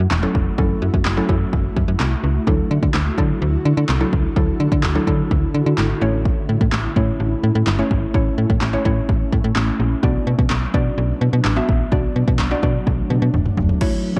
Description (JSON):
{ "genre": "dance-pop", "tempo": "127 BPM", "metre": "4/4", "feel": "straight", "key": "unclear", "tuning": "A4 = 440 Hz", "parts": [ { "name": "mallet-like synth pluck", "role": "accompaniment", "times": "0.0-14.2 s", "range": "F#3 to E5", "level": "-27 LUFS", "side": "equal", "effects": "chorus, cassette tape" }, { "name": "ethereal airy pad", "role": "sustained chords", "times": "0.0-14.2 s", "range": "F#2 to A4", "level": "-28 LUFS", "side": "equal", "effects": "ensemble chorus, built-in reverb, phaser, sidechain pumping, cassette tape" }, { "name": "slap-like FM bass", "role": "bass", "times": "0.0-13.7 s", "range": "E1 to D3", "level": "-22 LUFS", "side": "equal", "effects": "sidechain pumping" }, { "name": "punchy analog drum machine", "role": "drums", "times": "0.1-14.2 s", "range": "crash cymbal, handclaps, kick drum, snare drum, toms", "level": "-23 LUFS", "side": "equal", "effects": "cassette tape" }, { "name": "riser", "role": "sound effects", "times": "14.1-14.2 s", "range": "none", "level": "-41 LUFS", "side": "equal", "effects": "none" } ], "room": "light reverb, digital ambience", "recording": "home recording on cassette", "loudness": "-19 LUFS", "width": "mono", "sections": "0.0-13.8 A section", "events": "drum fill 12.9-13.8, 13.8-14.2", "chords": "0.0 F#m7; 2.5 Dadd9; 6.0 A; 10.0 Bm" }